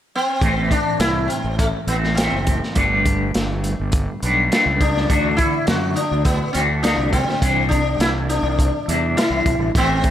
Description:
psychedelic rock; 103 BPM; 4/4; straight; A dorian; A4 = 439 Hz
sitar; melody; 0.2-10.1 s; A3 to F#4; -22 LUFS; left 1 dB; slapback echo
electric guitar with an envelope filter; riff; 0.4-10.1 s; A2 to B4; -21 LUFS; equal; tremolo, double-tracked left and right
fuzz fingered electric bass; bass; 0.4-10.0 s; F#1 to F#2; -23 LUFS; equal; overdrive
crunchy breakbeat drum kit; drums; 0.4-10.1 s; hi-hat, kick drum, snare drum; -22 LUFS; equal
light reverb, small room ambience; -16 LUFS; side -11 dB against mid
0.4-10.1 A section
0.4 Am; 2.8 Gadd9; 5.1 Dadd9; 7.4 Cadd9
| 0.42 1.01 1.59 2.17 | 2.76 3.34 3.93 4.51 | 5.09 5.68 6.26 6.84 | 7.43 8.01 8.59 9.18 | 9.76

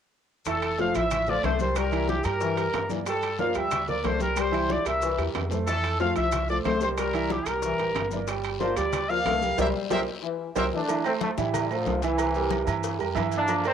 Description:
latin, salsa; 184 BPM; 4/4; straight; A4 = 441 Hz
bright trumpet section; melody; 0.5-10.6 s; G4 to F5; -28 LUFS; left 1 dB; cassette tape
warm grand piano; accompaniment; 0.5-13.7 s; E3 to G5; -30 LUFS; right 9 dB; cassette tape
upright bass; bass; 0.5-13.7 s; F1 to A2; -32 LUFS; equal
bongos and cowbell; percussion; 0.5-13.7 s; -37 LUFS; left 11 dB
congas; percussion; 0.5-13.7 s; -36 LUFS; left 9 dB
guiro; percussion; 0.5-13.7 s; -44 LUFS; left 10 dB
maracas; percussion; 0.5-13.7 s; -45 LUFS; left 10 dB
timbales and agogo bells; percussion; 0.5-13.7 s; -34 LUFS; right 11 dB
mellow trombone section; second line; 0.8-10.8 s; E3 to A3; -31 LUFS; left 9 dB; cassette tape
clear trombone section; melody; 10.7-13.7 s; C3 to D4; -28 LUFS; left 1 dB; cassette tape
light reverb, small room ambience; home recording on cassette; -24 LUFS; side -8 dB against mid
0.5-10.9 A section; 10.9-13.7 B section
band accent 9.6-10.9; drum fill 10.1-10.9
0.5 Fmaj7; 1.8 C7; 3.1 Gm7; 4.4 C7; 8.3 Gm7; 9.6 C7; 10.9 Fmaj7; 12.2 C7
| 0.46 0.79 1.11 1.44 | 1.76 2.09 2.42 2.74 | 3.07 3.39 3.72 4.04 | 4.37 4.69 5.02 5.35 | 5.67 6.00 6.32 6.65 | 6.98 7.30 7.63 7.95 | 8.28 8.61 8.93 9.26 | 9.59 9.91 10.24 10.56 | 10.89 11.21 11.54 11.87 | 12.19 12.52 12.84 13.17 | 13.49

